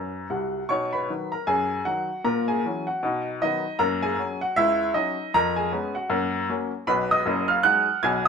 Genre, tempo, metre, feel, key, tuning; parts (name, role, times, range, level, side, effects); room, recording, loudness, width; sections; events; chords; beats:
jazz, stride piano; 156 BPM; 4/4; swing 59% on 8ths; B major; A4 = 443 Hz
clear upright piano; solo; 0.0-8.3 s; F#1 to G#6; -22 LUFS; equal
moderate large studio reverb, RT60 1.1 s; band playing live in one room; -22 LUFS; side -6 dB against mid
0.7-8.3 A section
0.0 B5; 0.7 B; 2.2 F#7/A#; 3.0 B; 3.8 F#; 5.3 C#7/E#; 6.1 F#; 6.9 B6
0.31 | 0.70 1.08 1.47 1.85 | 2.24 2.62 3.01 3.40 | 3.78 4.17 4.55 4.94 | 5.32 5.71 6.10 6.48 | 6.87 7.25 7.64 8.02